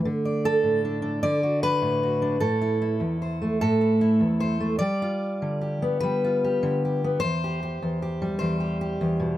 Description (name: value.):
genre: folk, solo fingerstyle acoustic guitar.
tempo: 50 BPM (dotted quarters).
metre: 6/8.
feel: rubato.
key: G major.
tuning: A4 = 440 Hz.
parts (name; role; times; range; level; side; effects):
fingerpicked steel-string acoustic guitar; solo; 0.0-9.4 s; E2 to D5; -22 LUFS; equal; none.
room: moderate small room reverb, RT60 0.5 s.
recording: none.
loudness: -22 LUFS.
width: side -13 dB against mid.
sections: 0.0-9.4 A section.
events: none.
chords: 0.0 D; 2.4 Am; 4.8 G7; 7.2 C/E.